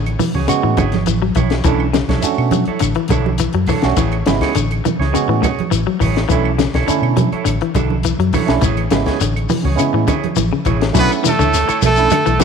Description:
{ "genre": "afrobeat", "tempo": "103 BPM", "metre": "4/4", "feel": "straight", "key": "B dorian", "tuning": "A4 = 440 Hz", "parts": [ { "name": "semi-hollow electric guitar", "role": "arpeggios", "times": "0.0-12.4 s", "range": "A2 to F#3", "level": "-20 LUFS", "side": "left 10 dB", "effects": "none" }, { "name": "vintage muted fingered electric bass", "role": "bass", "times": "0.0-12.4 s", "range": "G#1 to B2", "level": "-19 LUFS", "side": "equal", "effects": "none" }, { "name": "compact cocktail drum kit", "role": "drums", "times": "0.1-12.4 s", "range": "crash cymbal, hi-hat, kick drum, snare drum", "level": "-22 LUFS", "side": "left 4 dB", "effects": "none" }, { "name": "claves", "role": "percussion", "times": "0.1-12.4 s", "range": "none", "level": "-33 LUFS", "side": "right 12 dB", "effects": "none" }, { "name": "congas", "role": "percussion", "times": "0.2-12.4 s", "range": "none", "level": "-22 LUFS", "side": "right 10 dB", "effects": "none" }, { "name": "shekere", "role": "percussion", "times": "0.2-12.4 s", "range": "none", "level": "-26 LUFS", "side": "left 7 dB", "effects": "none" }, { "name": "barky tine electric piano", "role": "accompaniment", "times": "0.3-12.4 s", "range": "G#3 to F#4", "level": "-22 LUFS", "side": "right 12 dB", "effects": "none" }, { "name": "electric guitar through a small old amp", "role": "stabs", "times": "0.3-12.4 s", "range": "D4 to C#5", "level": "-25 LUFS", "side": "right 10 dB", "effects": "none" }, { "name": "clear trumpet", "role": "melody", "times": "11.0-12.4 s", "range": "A4 to B4", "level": "-16 LUFS", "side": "equal", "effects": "none" }, { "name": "edgy alto saxophone", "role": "second line", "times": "11.0-12.4 s", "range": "A3 to B3", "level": "-20 LUFS", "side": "right 12 dB", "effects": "none" } ], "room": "moderate plate reverb, RT60 2.3 s", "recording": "1960s-style stereo with parts hard left and right", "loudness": "-13 LUFS", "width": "side -6 dB against mid", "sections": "0.0-11.0 A section; 11.0-12.4 B section", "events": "none", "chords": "0.0 Amaj7; 1.7 Bm11; 4.0 Amaj7; 6.3 Bm11; 8.6 Amaj7; 11.0 Bm11", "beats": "0.49 1.07 | 1.65 2.23 2.81 3.40 | 3.98 4.56 5.14 5.72 | 6.30 6.88 7.46 8.05 | 8.63 9.21 9.79 10.37 | 10.95 11.53 12.11" }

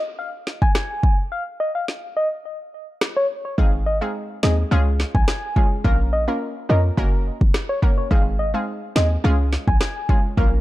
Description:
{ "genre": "dancehall", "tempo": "106 BPM", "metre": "4/4", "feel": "straight", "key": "unclear", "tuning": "A4 = 440 Hz", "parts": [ { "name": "soft struck synth lead", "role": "melody", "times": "0.2-10.5 s", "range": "Db5 to Ab5", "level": "-25 LUFS", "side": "left 1 dB", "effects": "chorus, ping-pong delay" }, { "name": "afro-pop drum kit", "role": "drums", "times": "0.5-10.5 s", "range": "kick drum, rim click, snare drum", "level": "-19 LUFS", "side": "equal", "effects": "overdrive" }, { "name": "analog pluck", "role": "accompaniment", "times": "3.6-10.6 s", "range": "Ab3 to Bb4", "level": "-26 LUFS", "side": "right 1 dB", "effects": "chorus" }, { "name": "short 808-style bass", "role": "bass", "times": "3.6-10.6 s", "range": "F1 to F2", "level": "-20 LUFS", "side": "equal", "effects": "none" } ], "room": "little or no reverb", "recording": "dark, warm production", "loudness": "-18 LUFS", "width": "side -16 dB against mid", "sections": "0.0-10.6 A section", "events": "break 1.3-3.6", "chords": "0.0 N.C.; 3.6 Ab; 4.7 Db; 5.8 Bbm; 7.0 Gb; 8.1 Ab; 9.2 Db", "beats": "0.19 0.75 | 1.32 1.88 2.45 3.02 | 3.58 4.15 4.71 5.28 | 5.85 6.41 6.98 7.54 | 8.11 8.68 9.24 9.81 | 10.37" }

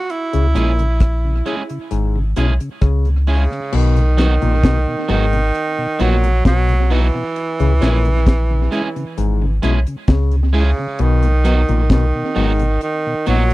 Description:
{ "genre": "roots reggae", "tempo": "66 BPM", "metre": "4/4", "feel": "straight", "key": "B major", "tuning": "A4 = 440 Hz", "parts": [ { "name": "breathy tenor saxophone", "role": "melody", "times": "0.0-13.5 s", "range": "C#3 to F#4", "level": "-21 LUFS", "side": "right 3 dB", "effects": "tape echo" }, { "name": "deep reggae drum kit", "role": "drums", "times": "0.1-13.5 s", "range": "crash cymbal, hi-hat, kick drum, rim click, snare drum", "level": "-17 LUFS", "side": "equal", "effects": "tape echo" }, { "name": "mellow tonewheel organ", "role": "accompaniment", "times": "0.3-13.5 s", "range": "B2 to E4", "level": "-24 LUFS", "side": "left 1 dB", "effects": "slow rotary speaker" }, { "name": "overdriven clav", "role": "riff", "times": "0.3-13.5 s", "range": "G#2 to C#3", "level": "-21 LUFS", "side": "left 5 dB", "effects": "none" }, { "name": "warm sub bass", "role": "bass", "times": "0.3-13.5 s", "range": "G#1 to C#2", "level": "-15 LUFS", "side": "equal", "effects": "none" }, { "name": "electric guitar at the edge of break-up", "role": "accompaniment", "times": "0.5-13.4 s", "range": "F#3 to G#4", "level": "-25 LUFS", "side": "right 4 dB", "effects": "tape echo" } ], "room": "little or no reverb", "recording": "dry, close 1970s-style studio recording", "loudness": "-14 LUFS", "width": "side -18 dB against mid", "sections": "0.0-3.7 A section; 3.7-13.5 B section", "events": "none", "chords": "0.1 C#m; 3.7 B; 7.4 C#m; 11.0 B", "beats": "| 0.10 1.01 1.91 2.82 | 3.73 4.64 5.55 6.45 | 7.36 8.27 9.18 10.09 | 11.00 11.90 12.81" }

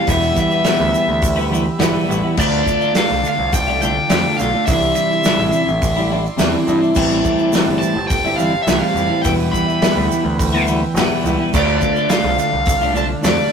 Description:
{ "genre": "indie rock", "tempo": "105 BPM", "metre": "4/4", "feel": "straight", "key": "unclear", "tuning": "A4 = 440 Hz", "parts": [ { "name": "biting overdriven guitar", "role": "melody", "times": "0.0-13.5 s", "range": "D5 to B5", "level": "-19 LUFS", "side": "equal", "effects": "none" }, { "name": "overdriven combo organ", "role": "sustained chords", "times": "0.0-13.5 s", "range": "D4 to C6", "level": "-28 LUFS", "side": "equal", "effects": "none" }, { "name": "semi-hollow electric guitar", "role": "riff", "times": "0.0-13.5 s", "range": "A2 to F4", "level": "-22 LUFS", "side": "right 4 dB", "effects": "none" }, { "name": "twelve-string electric guitar", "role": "riff", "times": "0.0-13.5 s", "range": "E2 to F4", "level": "-20 LUFS", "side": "left 2 dB", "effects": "phaser" }, { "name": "growling picked electric bass", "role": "bass", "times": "0.1-13.4 s", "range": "E1 to G2", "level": "-23 LUFS", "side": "equal", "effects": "overdrive" }, { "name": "loose indie drum kit", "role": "drums", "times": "0.1-13.4 s", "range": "crash cymbal, hi-hat, kick drum, snare drum", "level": "-21 LUFS", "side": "equal", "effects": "none" }, { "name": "egg shaker", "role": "percussion", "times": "0.1-13.4 s", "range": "none", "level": "-32 LUFS", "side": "right 6 dB", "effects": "none" } ], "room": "moderate small room reverb, RT60 0.6 s", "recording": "rough rehearsal-room recording, tube saturation", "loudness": "-14 LUFS", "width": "side -6 dB against mid", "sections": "0.0-13.5 A section", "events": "none", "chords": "0.1 Em; 2.4 Dm; 4.7 Cadd9; 7.0 Am7; 9.2 Em; 11.5 Dm", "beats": "| 0.07 0.65 1.22 1.80 | 2.37 2.95 3.52 4.09 | 4.67 5.24 5.81 6.39 | 6.96 7.53 8.10 8.67 | 9.25 9.82 10.39 10.96 | 11.53 12.10 12.67 13.24" }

